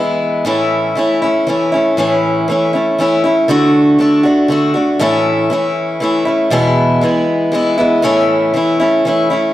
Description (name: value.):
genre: country.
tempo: 119 BPM.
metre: 3/4.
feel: straight.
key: A major.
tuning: A4 = 439 Hz.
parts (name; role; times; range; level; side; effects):
picked acoustic archtop guitar; solo; 0.0-9.5 s; E2 to F#4; -11 LUFS; equal; none.
room: wet recital hall reverb, RT60 1.4 s.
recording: none.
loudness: -11 LUFS.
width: side -14 dB against mid.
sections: 0.0-2.0 A section; 2.0-9.5 B section.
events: none.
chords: 0.5 A; 3.5 D; 5.0 A; 6.5 E; 8.0 A.